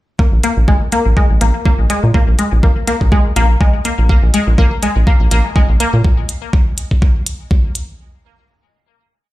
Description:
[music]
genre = minimal techno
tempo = 123 BPM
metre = 4/4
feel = swing 56% on 16ths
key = unclear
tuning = A4 = 440 Hz
[part]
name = resonant blip pluck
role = riff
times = 0.2-5.9 s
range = Ab3 to Bb3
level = -18 LUFS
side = left 1 dB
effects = analog chorus, cassette tape, sidechain pumping, ping-pong delay
[part]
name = electronic kick drum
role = drums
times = 0.2-7.6 s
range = none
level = -12 LUFS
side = equal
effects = overdrive
[part]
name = rubbery square bass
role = bass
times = 0.3-6.0 s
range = Bb1 to Bb2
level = -12 LUFS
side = equal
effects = sidechain pumping
[part]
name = electronic hi-hat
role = drums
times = 0.4-7.9 s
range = none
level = -22 LUFS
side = equal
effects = none
[sound]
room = little or no reverb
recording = played on a big sound system in a bare room, large studio reverb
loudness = -11 LUFS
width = side -17 dB against mid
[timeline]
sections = 0.2-8.0 groove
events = none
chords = none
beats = | 0.19 0.68 1.17 1.66 | 2.14 2.63 3.12 3.61 | 4.09 4.58 5.07 5.56 | 6.04 6.53 7.02 7.51

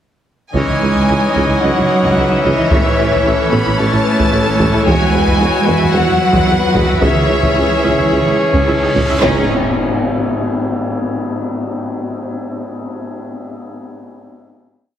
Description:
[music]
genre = cinematic, epic orchestral film score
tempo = 111 BPM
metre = 4/4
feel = straight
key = C# minor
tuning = A4 = 439 Hz
[part]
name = rich chamber violin section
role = melody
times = 0.5-9.5 s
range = C#5 to B5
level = -20 LUFS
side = left 2 dB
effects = none
[part]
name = rich studio viola section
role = accompaniment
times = 0.5-9.5 s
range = E3 to D#5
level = -22 LUFS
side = right 1 dB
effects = none
[part]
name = dark French horn section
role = sustained chords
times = 0.5-9.5 s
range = E3 to G#4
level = -22 LUFS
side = left 2 dB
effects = none
[part]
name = rich symphonic double bass section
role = bass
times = 0.5-9.5 s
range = A1 to E2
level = -20 LUFS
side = right 2 dB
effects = none
[part]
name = warm symphonic cello section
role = bass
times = 0.5-9.5 s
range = E3 to C#4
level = -19 LUFS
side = right 2 dB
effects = none
[part]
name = warm tuba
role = bass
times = 0.5-9.5 s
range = E1 to C#2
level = -22 LUFS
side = right 2 dB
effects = none
[part]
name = taiko ensemble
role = drums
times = 0.5-9.5 s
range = none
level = -18 LUFS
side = equal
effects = none
[part]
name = pipe organ, trumpet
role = sustained chords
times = 0.6-9.5 s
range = E3 to E5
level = -19 LUFS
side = equal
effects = none
[part]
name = rich symphonic violin section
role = second line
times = 1.6-9.5 s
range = C#4 to E5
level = -23 LUFS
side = left 3 dB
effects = none
[part]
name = cymbal swell and tam-tam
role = percussion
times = 4.9-11.4 s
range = none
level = -21 LUFS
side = left 2 dB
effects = none
[part]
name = reverse cymbal and impact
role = sound effects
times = 8.8-11.4 s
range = none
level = -31 LUFS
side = equal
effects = none
[sound]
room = wet scoring stage reverb, RT60 2.0 s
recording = heavily compressed radio sound, multiband compression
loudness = -12 LUFS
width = side -10 dB against mid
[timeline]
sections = 0.5-9.2 theme; 9.2-11.4 final chord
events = reverse cymbal 8.8-9.2; band accent 9.2-9.8; impact 9.2-11.4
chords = 0.5 C#madd9; 2.7 A; 4.9 Eadd9; 7.0 C#m; 9.2 C#madd9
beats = | 0.54 1.09 1.63 2.17 | 2.71 3.25 3.79 4.33 | 4.87 5.40 5.94 6.48 | 7.03 7.58 8.13 8.68 | 9.23 9.77 10.31 10.86

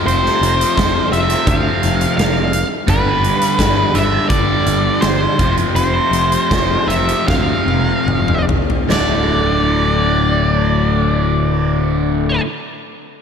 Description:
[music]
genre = classic rock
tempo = 72-85 BPM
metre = 4/4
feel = straight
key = unclear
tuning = A4 = 440 Hz
[part]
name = distorted electric guitar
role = riff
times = 0.0-12.5 s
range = D2 to G4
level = -21 LUFS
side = left 11 dB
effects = distortion, slapback echo
[part]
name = overdriven electric guitar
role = riff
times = 0.0-12.5 s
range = D2 to G3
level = -21 LUFS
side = right 10 dB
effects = phaser, slapback echo
[part]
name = octave-fuzz lead guitar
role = melody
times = 0.1-12.4 s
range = B4 to F5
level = -19 LUFS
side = equal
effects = distortion, slapback echo
[part]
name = modern bright picked electric bass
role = bass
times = 0.1-12.4 s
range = D1 to D2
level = -20 LUFS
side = equal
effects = none
[part]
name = huge arena drum kit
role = drums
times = 0.1-9.1 s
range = hi-hat, kick drum, snare drum, splash cymbal, toms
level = -19 LUFS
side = equal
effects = none
[sound]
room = moderate lush hall reverb, RT60 3.0 s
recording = big arena sound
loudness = -13 LUFS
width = side -7 dB against mid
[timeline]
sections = 0.0-8.9 A section; 8.9-12.2 B section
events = slowing down 2.9-8.9; drum fill 7.3-8.9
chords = 0.0 F; 2.9 G; 5.4 F; 8.9 D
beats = | 0.05 0.75 1.46 2.17 | 2.87 3.58 4.29 5.02 | 5.75 6.51 7.28 8.07 | 8.89 9.72 10.55 11.39

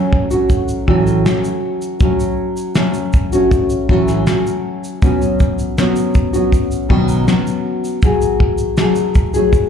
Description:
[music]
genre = acoustic pop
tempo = 80 BPM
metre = 4/4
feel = straight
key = unclear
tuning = A4 = 440 Hz
[part]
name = nylon-string guitar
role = accompaniment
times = 0.0-9.7 s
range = A2 to G#4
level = -15 LUFS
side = left 1 dB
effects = double-tracked left and right, slapback echo
[part]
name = soft brush drum kit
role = drums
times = 0.1-9.7 s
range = kick drum, shaker, snare drum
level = -16 LUFS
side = equal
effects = none
[sound]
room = light reverb, small room ambience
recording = live gig heard through the venue's PA, club reverb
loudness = -13 LUFS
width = side -8 dB against mid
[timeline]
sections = 0.0-9.7 A section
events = none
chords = 0.0 A6; 5.0 Badd9; 8.0 F#madd9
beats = 0.50 1.26 | 2.01 2.76 3.51 4.26 | 5.02 5.77 6.52 7.27 | 8.03 8.78 9.53

